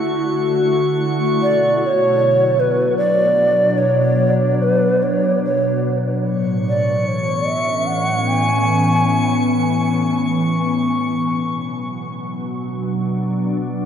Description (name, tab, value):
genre	ambient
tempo	free time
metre	none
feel	none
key	B dorian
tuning	A4 = 440 Hz
part	glassy FM pad	sustained chords	0.0-13.9 s	A2 to F#4	-18 LUFS	left 1 dB	ensemble chorus, built-in reverb
part	drifting glass-harmonics texture	texture	0.0-1.4, 6.8-11.1 s	C#6	-26 LUFS	left 2 dB	chorus, built-in reverb
part	mellow long shakuhachi	melody	1.4-9.9 s	B4 to G#5	-18 LUFS	right 1 dB	diffuse ambient delay
room	wet huge ambient reverb, RT60 8.6 s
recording	none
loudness	-15 LUFS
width	side -8 dB against mid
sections	0.0-1.4 A section; 1.4-11.1 B section; 11.1-13.9 A section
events	none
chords	0.0 D; 1.4 Bmadd9; 6.2 Amaj7; 11.1 Bm